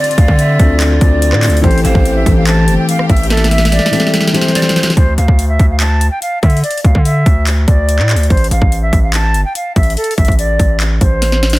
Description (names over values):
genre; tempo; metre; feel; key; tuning
hip hop, trap; 144 BPM; 4/4; half-time; D minor; A4 = 440 Hz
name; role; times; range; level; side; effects
concert flute; melody; 0.0-11.6 s; A4 to A5; -18 LUFS; equal; none
breathy large pan pipes; second line; 0.0-5.0 s; C5 to E5; -21 LUFS; right 2 dB; ping-pong delay
dark grand piano; accompaniment; 0.0-5.0 s; D3 to A4; -16 LUFS; left 3 dB; none
clear symphonic string section; sustained chords; 0.0-4.9 s; D3 to G4; -24 LUFS; right 1 dB; none
trap drum kit; drums; 0.0-11.6 s; handclaps, hi-hat, kick drum, rim click, snare drum; -13 LUFS; equal; overdrive
distorted 808-style bass; bass; 0.2-11.6 s; G1 to D3; -13 LUFS; equal; distortion
room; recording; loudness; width
small room ambience; dense, heavily limited modern master; -9 LUFS; side -19 dB against mid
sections
0.0-5.0 A section; 5.0-11.6 B section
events
drum fill 3.3-5.0, 11.2-11.6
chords
0.0 Dm7; 1.6 Am7; 5.0 D5; 8.3 Am